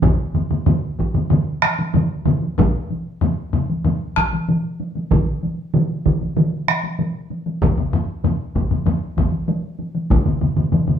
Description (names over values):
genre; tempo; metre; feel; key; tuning
japanese traditional, taiko drum ensemble; 95 BPM; 4/4; straight; none; none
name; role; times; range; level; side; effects
solo taiko drums; percussion; 0.0-11.0 s; none; -21 LUFS; left 3 dB; none
solo taiko drums; percussion; 0.0-11.0 s; none; -20 LUFS; right 2 dB; none
taiko ensemble; percussion; 0.0-10.9 s; none; -23 LUFS; equal; none
taiko ensemble; percussion; 0.0-10.3 s; none; -21 LUFS; equal; none
room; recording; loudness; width
wet large studio reverb, RT60 0.9 s; band playing live in one room; -18 LUFS; side -8 dB against mid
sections
0.0-11.0 A section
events
speeding up 0.0-11.0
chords
none